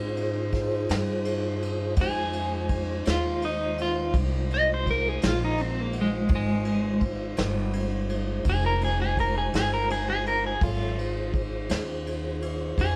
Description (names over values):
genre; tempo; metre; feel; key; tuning
slow blues; 56 BPM (dotted quarters); 12/8; straight; F minor; A4 = 440 Hz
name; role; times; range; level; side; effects
mellow tonewheel organ; sustained chords; 0.0-13.0 s; Gb3 to E5; -34 LUFS; equal; slow rotary speaker
upright bass; bass; 0.0-13.0 s; F1 to Ab2; -32 LUFS; equal; none
vintage brush drum kit; drums; 0.2-12.9 s; kick drum, ride cymbal, snare drum; -33 LUFS; equal; none
electric guitar at the edge of break-up; melody; 2.0-13.0 s; Ab3 to Eb5; -29 LUFS; equal; tremolo
room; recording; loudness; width
moderate studio reverb, RT60 0.6 s; band playing live in one room; -27 LUFS; mono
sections
0.0-13.0 A section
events
clean electric guitar solo 0.0-13.0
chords
0.0 Fm7